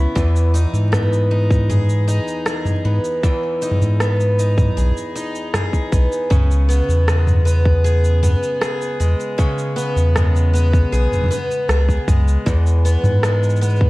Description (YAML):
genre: folktronica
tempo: 78 BPM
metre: 4/4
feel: straight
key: unclear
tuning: A4 = 440 Hz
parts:
  - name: picked twelve-string acoustic guitar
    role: arpeggios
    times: 0.0-13.9 s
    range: E2 to G#4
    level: -21 LUFS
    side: equal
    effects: ping-pong delay
  - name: warm sub bass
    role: bass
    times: 0.0-13.9 s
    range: B1 to G#2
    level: -15 LUFS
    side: equal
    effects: none
  - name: electronic kick drum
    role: drums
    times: 0.2-13.9 s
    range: none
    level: -17 LUFS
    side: equal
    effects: none
  - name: organic electronic drum kit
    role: drums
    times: 0.2-13.8 s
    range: rim click, shaker, toms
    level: -22 LUFS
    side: equal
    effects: none
room: digital ambience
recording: dark, warm production, vinyl crackle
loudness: -15 LUFS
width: side -20 dB against mid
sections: 0.0-13.9 A section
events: none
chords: 0.2 Emaj7; 6.3 C#m7; 12.5 E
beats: | 0.16 0.93 1.70 2.47 | 3.24 4.01 4.78 5.54 | 6.31 7.08 7.85 8.62 | 9.39 10.16 10.93 11.70 | 12.47 13.24